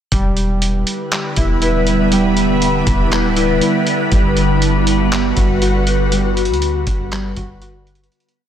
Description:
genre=hip hop, atmospheric cloud-rap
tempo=120 BPM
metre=4/4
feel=half-time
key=E minor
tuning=A4 = 436 Hz
part: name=ethereal airy pad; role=sustained chords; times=0.8-8.1 s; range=D3 to B4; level=-17 LUFS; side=equal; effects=ensemble chorus, built-in reverb, phaser, sidechain pumping
part: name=warbly lo-fi synth keys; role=arpeggios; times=0.1-8.1 s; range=G3 to F#4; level=-21 LUFS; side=right 1 dB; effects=chorus, low-pass filter, digital delay
part: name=soft 808-style bass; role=bass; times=0.1-8.1 s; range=D1 to D2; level=-19 LUFS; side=equal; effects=none
part: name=trip hop sampler-style drum kit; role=drums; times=0.1-8.4 s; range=handclaps, hi-hat, kick drum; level=-21 LUFS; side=equal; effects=none
room=light reverb, digital ambience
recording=none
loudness=-13 LUFS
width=side -9 dB against mid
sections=0.1-8.1 verse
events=fade-out 6.1-8.1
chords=0.1 Em7; 4.1 Gmaj7

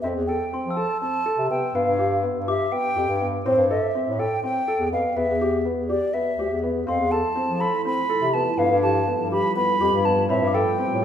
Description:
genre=contemporary instrumental, chamber music in an uneven meter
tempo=246 BPM (eighths)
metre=7/8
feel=straight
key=unclear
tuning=A4 = 440 Hz
part: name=hollow silver concert flute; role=melody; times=0.0-11.0 s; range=C5 to B5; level=-24 LUFS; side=right 1 dB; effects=none
part: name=felt-muted upright piano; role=arpeggios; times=0.0-11.0 s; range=B3 to A4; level=-26 LUFS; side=left 2 dB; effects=none
part: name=warm bass clarinet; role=bass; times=0.0-11.0 s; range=D2 to F3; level=-26 LUFS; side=left 1 dB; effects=none
part: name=glockenspiel with rubber mallets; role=texture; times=0.5-3.0, 6.9-7.4, 10.3-10.9 s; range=B5 to E6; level=-35 LUFS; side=left 3 dB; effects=none
part: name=deep dark ambient pad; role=sustained chords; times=7.4-11.0 s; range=F3 to B4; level=-28 LUFS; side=right 2 dB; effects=chorus, built-in reverb
room=moderate concert hall reverb, RT60 2.3 s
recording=minimal, uncompressed stereo recording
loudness=-20 LUFS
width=side -9 dB against mid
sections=0.0-11.0 A section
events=none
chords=0.0 Fmaj7; 1.7 G7; 3.5 Am7; 5.2 Em; 6.9 Fmaj7; 8.6 G7; 10.3 Am7

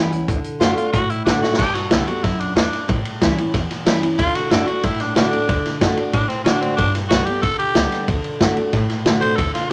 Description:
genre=rockabilly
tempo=185 BPM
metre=4/4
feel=straight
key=D major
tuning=A4 = 439 Hz
part: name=picked steel-string acoustic guitar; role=accompaniment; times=0.0-9.7 s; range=E2 to G4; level=-24 LUFS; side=equal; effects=none
part: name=upright bass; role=bass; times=0.0-9.6 s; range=F#1 to B2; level=-31 LUFS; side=equal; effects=none
part: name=vintage drum kit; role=drums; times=0.1-9.6 s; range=crash cymbal, hi-hat, kick drum, ride cymbal, snare drum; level=-22 LUFS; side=equal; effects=none
part: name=growling tenor saxophone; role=melody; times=0.6-9.7 s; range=C4 to C5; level=-24 LUFS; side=equal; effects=none
room=light reverb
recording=none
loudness=-19 LUFS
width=mono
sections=0.0-1.6 A section; 1.6-9.7 B section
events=drum fill 1.4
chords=0.3 D; 1.6 G; 2.9 A7; 4.2 D; 6.8 G; 8.1 D

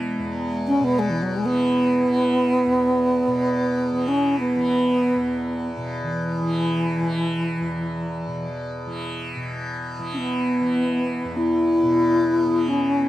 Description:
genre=world meditative, free-time meditation music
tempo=free time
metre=none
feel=none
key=unclear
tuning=A4 = 443 Hz
part: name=tanpura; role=drone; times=0.0-13.1 s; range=E2 to E3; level=-28 LUFS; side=equal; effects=stereo widening
part: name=glass harmonica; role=texture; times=0.0-0.6, 10.1-13.1 s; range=G#3 to B3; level=-30 LUFS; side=equal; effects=none
part: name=breathy bright bass flute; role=melody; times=0.7-13.1 s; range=E3 to E4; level=-20 LUFS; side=equal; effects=none
room=wet booth ambience, RT60 0.2 s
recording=cassette tape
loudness=-20 LUFS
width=side -14 dB against mid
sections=0.0-9.3 A section; 9.3-13.1 A section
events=none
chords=none

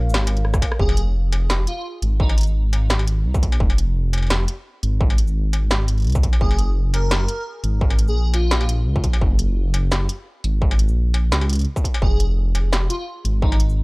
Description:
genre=half-time drum and bass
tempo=171 BPM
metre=4/4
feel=swing 53% on 16ths, half-time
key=F phrygian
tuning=A4 = 440 Hz
part: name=dark analog pad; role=sustained chords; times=0.0-0.8 s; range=Bb4 to F5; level=-34 LUFS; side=left 1 dB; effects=chorus, sidechain pumping
part: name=dark detuned saw bass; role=bass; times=0.0-13.8 s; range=F1 to Db2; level=-19 LUFS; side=equal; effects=tube saturation
part: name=industrial drum kit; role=drums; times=0.1-13.8 s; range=hi-hat, rim click, shaker, snare drum, struck metal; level=-24 LUFS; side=equal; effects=none
part: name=electronic kick drum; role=drums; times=0.5-13.5 s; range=none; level=-19 LUFS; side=equal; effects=distortion
part: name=airy dreamy lead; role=melody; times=0.8-2.3, 6.4-8.7, 12.0-13.6 s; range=Eb4 to Bb4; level=-30 LUFS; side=equal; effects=chorus, analog delay
room=little or no reverb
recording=dry, gritty hardware recording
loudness=-17 LUFS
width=side -26 dB against mid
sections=0.8-13.8 A section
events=drum fill 0.4-0.8; drop 0.8-13.8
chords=0.0 Gb (rootless); 0.8 Fm; 6.4 Gb; 12.0 Fm

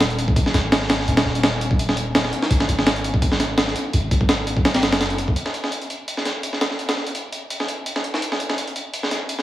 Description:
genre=drum and bass, jungle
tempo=168 BPM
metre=4/4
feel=swing 54% on 16ths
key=unclear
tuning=A4 = 439 Hz
part: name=long sustained 808-style bass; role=bass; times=0.0-5.3 s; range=Eb1 to Ab1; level=-24 LUFS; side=equal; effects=tube saturation
part: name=breakbeat sampler-style drum kit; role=drums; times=0.0-9.4 s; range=hi-hat, kick drum, snare drum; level=-19 LUFS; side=equal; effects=high-pass filter on kick, high-pass filter on hats, high-pass filter on snare, high-pass filter on room
room=moderate plate reverb, RT60 2.0 s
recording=heavily compressed radio sound, multiband compression, vinyl crackle, small room ambience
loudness=-19 LUFS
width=side -14 dB against mid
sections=0.0-5.4 A section; 5.4-9.4 B section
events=drop 0.0-5.4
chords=none

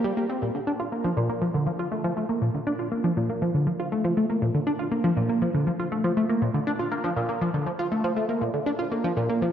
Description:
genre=ambient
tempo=120 BPM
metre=4/4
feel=straight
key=unclear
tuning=A4 = 440 Hz
part: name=tight sequenced synth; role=solo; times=0.0-9.5 s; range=Bb2 to F4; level=-23 LUFS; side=equal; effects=chorus, phaser, cassette tape, tape echo
room=wet plate reverb, RT60 2.8 s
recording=worn, warbling old tape, cassette tape, warbly pitch drift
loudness=-23 LUFS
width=side -9 dB against mid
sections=0.0-9.5 A section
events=none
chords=none

